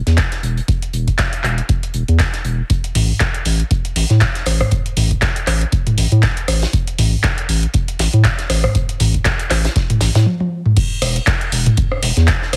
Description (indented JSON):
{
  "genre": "acid house",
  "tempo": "119 BPM",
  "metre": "4/4",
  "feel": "swing 56% on 16ths",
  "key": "unclear",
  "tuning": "A4 = 439 Hz",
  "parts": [
    { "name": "round analog bass", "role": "bass", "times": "0.1-12.6 s", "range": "E1 to A2", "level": "-18 LUFS", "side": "equal", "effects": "sidechain pumping" },
    { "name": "booming analog drum machine", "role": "drums", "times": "0.1-12.6 s", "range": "crash cymbal, handclaps, hi-hat, rim click, toms", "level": "-21 LUFS", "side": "equal", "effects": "none" },
    { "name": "warm soul drum kit", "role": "drums", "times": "0.1-12.6 s", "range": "hi-hat, snare drum", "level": "-31 LUFS", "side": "equal", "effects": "sidechain pumping on hats, high-pass filter on hats, high-pass filter on snare, high-pass filter on room" },
    { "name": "electronic kick drum", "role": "drums", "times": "0.2-12.4 s", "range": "none", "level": "-21 LUFS", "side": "equal", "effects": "none" }
  ],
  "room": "little or no reverb",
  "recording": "heavily compressed radio sound",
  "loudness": "-17 LUFS",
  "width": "mono",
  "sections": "0.0-10.8 A section; 10.8-12.6 B section",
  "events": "drum fill 10.3-10.8; drop 10.8-12.6",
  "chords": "none"
}